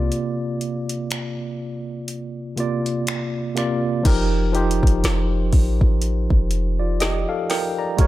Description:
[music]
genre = contemporary R&B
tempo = 61 BPM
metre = 4/4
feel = swing 58% on 16ths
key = unclear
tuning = A4 = 441 Hz
[part]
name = tine electric piano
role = accompaniment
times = 0.0-8.1 s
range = C3 to Bb5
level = -23 LUFS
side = right 1 dB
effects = slow stereo tremolo
[part]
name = clean 808-style bass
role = bass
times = 0.0-8.1 s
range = F1 to C2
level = -21 LUFS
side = equal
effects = none
[part]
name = smooth R&B drum kit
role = drums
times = 0.1-8.1 s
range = crash cymbal, finger snaps, hi-hat, kick drum, snare drum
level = -21 LUFS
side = equal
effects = none
[sound]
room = digital ambience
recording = none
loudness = -19 LUFS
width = side -15 dB against mid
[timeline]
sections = 0.0-4.1 A section; 4.1-8.1 B section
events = break 0.1-4.1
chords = 0.0 C9sus4; 4.1 F9sus4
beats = | 0.12 1.10 2.09 3.07 | 4.05 5.04 6.02 7.00 | 7.99

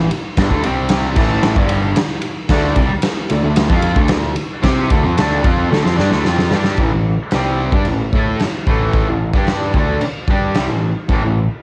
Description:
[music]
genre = garage rock duo or trio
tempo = 112 BPM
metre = 4/4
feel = straight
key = A minor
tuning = A4 = 439 Hz
[part]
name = fuzz guitar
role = riff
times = 0.0-11.4 s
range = G2 to C5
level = -20 LUFS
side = equal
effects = distortion, cassette tape
[part]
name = growling picked electric bass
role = bass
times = 0.0-11.5 s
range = G1 to C3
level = -23 LUFS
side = equal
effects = overdrive
[part]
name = raw garage drum kit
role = drums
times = 0.1-11.2 s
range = crash cymbal, kick drum, ride cymbal, snare drum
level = -20 LUFS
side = equal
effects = cassette tape
[sound]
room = studio reverb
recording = home recording on cassette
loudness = -16 LUFS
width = mono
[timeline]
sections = 0.0-6.8 A section; 6.8-11.6 B section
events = drum fill 5.7-6.8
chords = 0.0 N.C.; 0.6 C5; 1.2 A5; 2.5 D5; 6.8 Am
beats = | 0.38 0.91 1.45 1.98 | 2.51 3.05 3.58 4.11 | 4.65 5.18 5.72 6.25 | 6.79 7.32 7.86 8.40 | 8.94 9.47 10.01 10.55 | 11.09

